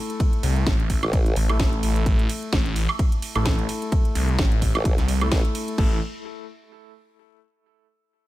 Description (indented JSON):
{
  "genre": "bass house",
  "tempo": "129 BPM",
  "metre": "4/4",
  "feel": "swing 56% on 16ths",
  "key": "A minor",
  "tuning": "A4 = 439 Hz",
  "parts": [
    { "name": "warm grand piano", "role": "stabs", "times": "0.0-6.0 s", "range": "A3 to A4", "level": "-32 LUFS", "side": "left 2 dB", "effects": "sidechain pumping, ping-pong delay" },
    { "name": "house drum kit", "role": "drums", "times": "0.1-5.9 s", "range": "crash cymbal, hi-hat, ride cymbal, snare drum, woodblock", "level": "-30 LUFS", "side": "right 2 dB", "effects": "studio reverb" },
    { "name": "electronic kick drum", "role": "drums", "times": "0.2-5.9 s", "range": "none", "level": "-22 LUFS", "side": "equal", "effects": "studio reverb" },
    { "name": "phased detuned saw bass", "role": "bass", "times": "0.4-6.0 s", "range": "A1 to C2", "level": "-22 LUFS", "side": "equal", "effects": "phaser, tube saturation, sidechain pumping" },
    { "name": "formant-sweep wobble bass", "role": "bass", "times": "1.0-1.3, 4.7-5.4 s", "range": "A1", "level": "-24 LUFS", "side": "equal", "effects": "chorus, overdrive, sidechain pumping" }
  ],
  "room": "digital ambience",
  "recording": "none",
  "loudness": "-20 LUFS",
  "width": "side -16 dB against mid",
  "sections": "0.0-5.8 A section; 5.8-7.6 B section",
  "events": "drop 0.0-5.8",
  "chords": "0.0 A5"
}